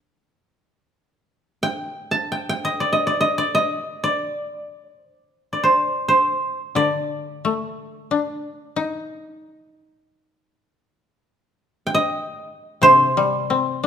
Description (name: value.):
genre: japanese traditional, Japanese chamber music.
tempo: free time.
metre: none.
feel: none.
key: D in sen.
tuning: A4 = 442 Hz.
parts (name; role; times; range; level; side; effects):
koto; accompaniment; 0.0-13.9 s; C3 to Eb4; -23 LUFS; left 5 dB; none.
koto; melody; 1.6-13.9 s; C5 to A5; -18 LUFS; right 1 dB; none.
room: moderate recital hall reverb, RT60 1.5 s.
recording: none.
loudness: -18 LUFS.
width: side -8 dB against mid.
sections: 0.0-13.9 A section.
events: none.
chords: none.